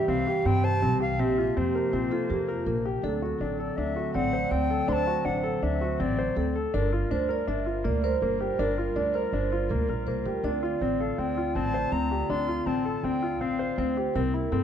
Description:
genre	contemporary instrumental, chamber music in an uneven meter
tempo	162 BPM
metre	5/4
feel	straight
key	unclear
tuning	A4 = 436 Hz
part	bright wooden flute	melody	0.0-6.6, 11.0-14.0 s	C5 to C6	-32 LUFS	left 2 dB	none
part	vibraphone with soft mallets	second line	0.0-14.6 s	F4 to E5	-31 LUFS	right 5 dB	none
part	warm woodwind section	sustained chords	0.0-14.6 s	C3 to Bb4	-35 LUFS	equal	none
part	clear concert grand piano	arpeggios	0.0-14.6 s	Bb3 to C5	-29 LUFS	left 5 dB	none
part	upright bass	bass	0.1-14.6 s	G1 to G2	-30 LUFS	right 2 dB	none
room	light reverb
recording	dark, warm production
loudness	-25 LUFS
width	side -9 dB against mid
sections	0.0-3.0 A section; 3.0-14.6 B section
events	none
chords	0.0 C; 1.2 Bbsus2; 3.0 D7; 6.7 Gm7; 10.4 Dm7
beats	0.08 0.45 0.82 | 1.19 1.56 1.93 2.30 2.67 | 3.04 3.41 3.78 4.15 4.52 | 4.89 5.26 5.63 6.00 6.37 | 6.74 7.11 7.48 7.85 8.22 | 8.59 8.96 9.33 9.70 10.07 | 10.45 10.81 11.19 11.56 11.93 | 12.30 12.67 13.04 13.41 13.78 | 14.15 14.52

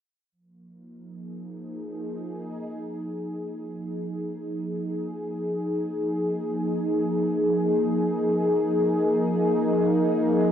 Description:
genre	ambient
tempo	free time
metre	none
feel	none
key	F minor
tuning	A4 = 443 Hz
part	sweeping resonant pad	sustained chords	0.3-10.5 s	F3 to Ab4	-24 LUFS	equal	chorus, cassette tape
room	wet spring reverb, RT60 1.3 s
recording	home recording on cassette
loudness	-24 LUFS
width	side -9 dB against mid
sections	0.3-10.5 A section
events	fade-in on analog synth pad 0.3-10.5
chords	0.3 Fm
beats	free time

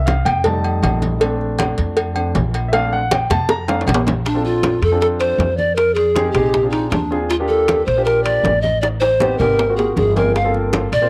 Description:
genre	Afro-Cuban jazz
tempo	157 BPM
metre	4/4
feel	straight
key	Bb major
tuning	A4 = 439 Hz
part	warm concert grand piano	accompaniment	0.0-11.1 s	G3 to Bb5	-24 LUFS	equal	none
part	upright bass	bass	0.0-11.1 s	G1 to F2	-24 LUFS	equal	none
part	congas	percussion	0.1-11.1 s	none	-27 LUFS	equal	none
part	cowbell and bongos	percussion	0.1-11.1 s	none	-25 LUFS	equal	none
part	timbales and agogo bells	percussion	0.1-11.1 s	none	-27 LUFS	equal	none
part	polished pan flute	melody	4.3-11.1 s	D4 to F5	-19 LUFS	equal	none
room	moderate spring reverb, RT60 1.5 s, small room ambience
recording	none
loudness	-17 LUFS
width	mono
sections	0.0-4.3 A section; 4.3-11.1 B section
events	grand piano solo 0.0-4.3; drum fill 3.1-4.3, 8.8-10.4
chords	0.5 F7; 1.2 Bbmaj7; 5.8 Fm7; 6.5 Bb7; 7.3 Ebmaj9; 8.8 Am7b5; 9.6 Ab13; 10.4 Gm11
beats	0.07 0.45 0.83 | 1.21 1.59 1.97 2.35 | 2.73 3.11 3.49 3.87 | 4.25 4.63 5.02 5.40 | 5.78 6.16 6.54 6.92 | 7.30 7.68 8.07 8.45 | 8.83 9.21 9.59 9.97 | 10.35 10.73

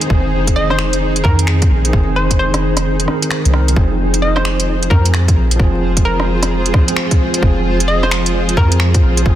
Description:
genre	future garage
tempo	131 BPM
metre	4/4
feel	swing 64% on 16ths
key	F minor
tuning	A4 = 440 Hz
part	tine electric piano	accompaniment	0.0-9.4 s	Eb3 to Bb4	-20 LUFS	right 3 dB	overdrive, fast stereo tremolo, sidechain pumping, tape echo
part	granular cloud pad	sustained chords	0.0-9.4 s	Eb4 to C5	-21 LUFS	equal	built-in reverb, vintage 12-bit sampler grit, sidechain pumping
part	organic electronic drum kit	drums	0.0-9.2 s	finger snaps, hi-hat, rim click	-20 LUFS	equal	soft clipping on snare
part	soft 808-style bass	bass	0.1-9.4 s	F1 to F2	-16 LUFS	equal	sidechain pumping
part	electronic kick drum	drums	0.1-9.4 s	none	-15 LUFS	equal	none
part	hollow square pluck	melody	0.6-8.8 s	Bb4 to Eb5	-21 LUFS	left 1 dB	chorus, tape echo
room	light reverb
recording	dense, heavily limited modern master, vinyl crackle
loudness	-12 LUFS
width	side -12 dB against mid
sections	0.0-3.8 A section; 3.8-9.4 B section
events	kick drops out 2.8-3.8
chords	0.0 Ab/F; 3.8 Fm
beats	| 0.10 0.56 1.01 1.47 | 1.93 2.39 2.85 3.31 | 3.76 4.22 4.68 5.14 | 5.59 6.05 6.51 6.97 | 7.43 7.88 8.34 8.80 | 9.26

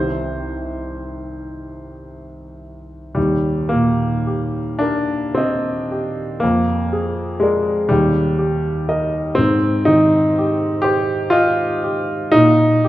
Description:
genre	classical, romantic nocturne for solo piano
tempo	35-42 BPM (dotted quarters)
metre	12/8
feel	rubato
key	C minor, Eb major from 3.2 s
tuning	A4 = 440 Hz
part	clear grand piano	solo	0.0-12.9 s	C2 to Eb5	-16 LUFS	equal	none
room	wet recital hall reverb, RT60 1.8 s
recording	recorded in a church or concert hall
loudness	-16 LUFS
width	side -14 dB against mid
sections	0.0-3.2 A section; 3.2-12.9 B section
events	none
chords	0.0 Cm; 3.2 Eb; 6.4 Bb7/F; 7.9 Eb; 9.4 Abmaj7; 12.3 Eb5/Bb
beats	1.50 | 3.16 4.81 6.41 7.90 | 9.39 10.86 12.34

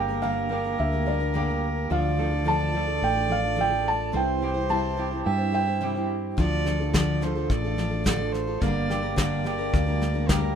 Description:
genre	acoustic folk duo or small band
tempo	107 BPM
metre	4/4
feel	straight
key	D minor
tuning	A4 = 441 Hz
part	felt-muted upright piano	melody	0.0-6.1 s	D5 to A5	-28 LUFS	right 3 dB	none
part	warm fiddle	second line	0.0-10.6 s	Bb4 to E5	-32 LUFS	right 1 dB	none
part	picked steel-string acoustic guitar	accompaniment	0.0-10.6 s	G2 to C5	-31 LUFS	left 4 dB	none
part	electric guitar through a small old amp	arpeggios	0.0-10.6 s	E3 to A4	-31 LUFS	right 5 dB	tremolo
part	mellow fretless electric bass	bass	0.0-10.6 s	G1 to G2	-28 LUFS	left 1 dB	none
part	soft brush drum kit	drums	6.4-10.4 s	kick drum, snare drum	-26 LUFS	left 1 dB	none
room	light reverb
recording	minimal, uncompressed stereo recording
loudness	-23 LUFS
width	side -8 dB against mid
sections	0.0-10.6 A section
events	none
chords	0.0 Gm; 1.9 Dm; 4.2 C; 6.4 Dm; 8.6 Gm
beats	0.24 0.80 1.36 | 1.92 2.48 3.04 3.59 | 4.15 4.71 5.27 5.83 | 6.39 6.95 7.51 8.06 | 8.62 9.18 9.74 10.30

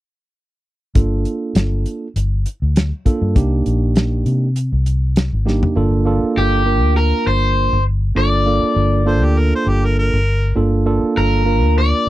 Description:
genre	straight-eighth soul blues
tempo	100 BPM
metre	4/4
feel	swing 55% on 16ths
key	G minor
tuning	A4 = 438 Hz
part	barky tine electric piano	accompaniment	0.9-12.1 s	Bb3 to Bb4	-19 LUFS	right 4 dB	none
part	vintage muted fingered electric bass	bass	1.0-12.1 s	G1 to C3	-16 LUFS	left 1 dB	none
part	warm soul drum kit	drums	1.0-5.8 s	hi-hat, kick drum, snare drum, toms	-17 LUFS	equal	none
part	overdriven semi-hollow guitar	melody	6.4-12.1 s	G4 to D5	-18 LUFS	left 2 dB	none
part	warm harmonica	second line	9.1-10.6 s	G4 to C5	-22 LUFS	equal	overdrive
room	little or no reverb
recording	none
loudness	-14 LUFS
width	side -15 dB against mid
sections	1.0-5.8 A section; 5.8-12.1 B section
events	drum fill 5.5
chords	1.0 Gm7; 3.4 Cm7; 5.8 Gm9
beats	| 0.96 1.56 2.16 2.76 | 3.36 3.96 4.57 5.17 | 5.77 6.37 6.97 7.57 | 8.17 8.77 9.37 9.97 | 10.57 11.17 11.77

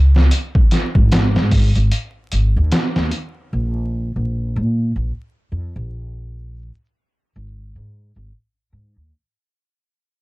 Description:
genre	trip hop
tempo	75 BPM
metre	4/4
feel	swing 59% on 16ths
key	unclear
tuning	A4 = 436 Hz
part	upright bass	bass	0.0-9.1 s	G#1 to A#2	-17 LUFS	equal	none
part	trip hop sampler-style drum kit	drums	0.2-3.3 s	hi-hat, kick drum, snare drum	-16 LUFS	equal	none
room	little or no reverb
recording	dark, warm production, vinyl crackle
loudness	-16 LUFS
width	side -20 dB against mid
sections	0.0-9.9 A section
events	fade-out 0.0-9.9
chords	none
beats	| 0.31 1.11 1.91 2.71 | 3.51 4.31 5.11 5.91 | 6.71 7.51 8.31

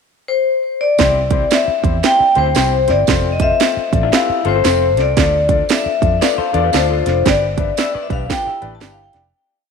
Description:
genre	uptempo 1960s-style soul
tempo	115 BPM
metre	4/4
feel	swing 62% on 8ths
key	C major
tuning	A4 = 442 Hz
part	vibraphone with hard mallets	melody	0.3-9.1 s	C5 to A5	-16 LUFS	left 3 dB	tape echo
part	clear concert grand piano	accompaniment	1.0-9.2 s	C4 to E5	-23 LUFS	left 10 dB	none
part	vintage muted fingered electric bass	bass	1.0-9.3 s	F1 to F2	-20 LUFS	right 1 dB	none
part	house drum kit	drums	1.0-9.2 s	hi-hat, kick drum, snare drum	-18 LUFS	right 5 dB	none
part	tambourine	percussion	1.0-9.0 s	none	-31 LUFS	right 13 dB	none
part	electric guitar through a small old amp	riff	4.0-9.2 s	D4 to E5	-23 LUFS	left 11 dB	none
room	moderate echo chamber reverb, RT60 2.1 s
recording	1960s-style stereo with parts hard left and right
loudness	-13 LUFS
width	side -6 dB against mid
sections	0.0-1.0 pickup bar; 1.0-9.3 verse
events	fade-out 7.3-9.3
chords	0.0 N.C.; 1.0 C; 3.1 F; 7.3 G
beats	0.47 | 0.99 1.51 2.03 2.56 | 3.08 3.60 4.12 4.65 | 5.17 5.69 6.21 6.74 | 7.26 7.78 8.30 8.82

